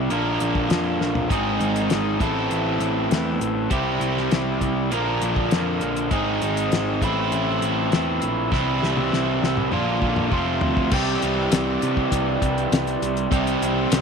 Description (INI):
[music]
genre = classic rock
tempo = 100 BPM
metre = 4/4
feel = straight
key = C mixolydian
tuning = A4 = 440 Hz
[part]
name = overdriven electric guitar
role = riff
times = 0.0-14.0 s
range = F2 to Bb4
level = -22 LUFS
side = right 1 dB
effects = none
[part]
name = fuzz picked electric bass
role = bass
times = 0.0-14.0 s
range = F1 to C3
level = -27 LUFS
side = equal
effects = overdrive
[part]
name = damped 70s drum kit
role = drums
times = 0.1-14.0 s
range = crash cymbal, hi-hat, kick drum, snare drum, toms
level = -25 LUFS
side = left 2 dB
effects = none
[sound]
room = light reverb, studio reverb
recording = 1960s-style stereo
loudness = -20 LUFS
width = side -6 dB against mid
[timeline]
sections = 0.0-10.9 A section; 10.9-14.0 B section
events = drum fill 1.0-1.3, 8.5-10.9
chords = 0.1 Bb; 1.3 Ab; 2.2 Am; 3.7 C; 4.9 Bb; 6.1 Ab; 7.0 Am; 8.5 C; 9.7 Bb; 10.3 F; 10.9 C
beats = 0.11 0.71 | 1.31 1.91 2.51 3.12 | 3.72 4.32 4.92 5.52 | 6.12 6.72 7.32 7.92 | 8.53 9.13 9.72 10.32 | 10.92 11.52 12.12 12.71 | 13.31 13.91